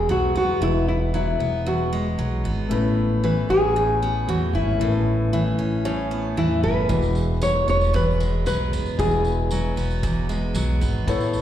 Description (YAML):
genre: acoustic pop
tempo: 115 BPM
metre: 4/4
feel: straight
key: E major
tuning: A4 = 441 Hz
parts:
  - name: nylon-string guitar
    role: melody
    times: 0.0-9.7 s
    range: C#4 to C#5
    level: -23 LUFS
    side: left 1 dB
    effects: slapback echo
  - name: dark concert grand piano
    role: accompaniment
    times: 0.0-11.4 s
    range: G#3 to C#5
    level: -30 LUFS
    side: left 6 dB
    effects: slapback echo
  - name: picked steel-string acoustic guitar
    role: accompaniment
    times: 0.0-11.4 s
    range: E2 to C#4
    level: -26 LUFS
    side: right 3 dB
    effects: slapback echo
  - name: upright bass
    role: bass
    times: 0.0-11.4 s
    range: E1 to E2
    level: -24 LUFS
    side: equal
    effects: none
  - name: kick drum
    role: drums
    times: 6.9-11.2 s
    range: none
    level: -28 LUFS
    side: equal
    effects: none
  - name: tambourine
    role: percussion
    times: 6.9-11.4 s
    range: none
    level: -40 LUFS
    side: right 3 dB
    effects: none
room: light reverb, studio ambience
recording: live gig heard through the venue's PA, recital hall reverb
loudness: -19 LUFS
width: side -11 dB against mid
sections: 0.0-11.4 A section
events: none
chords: 0.0 Eadd9; 2.7 Aadd9; 6.9 Eadd9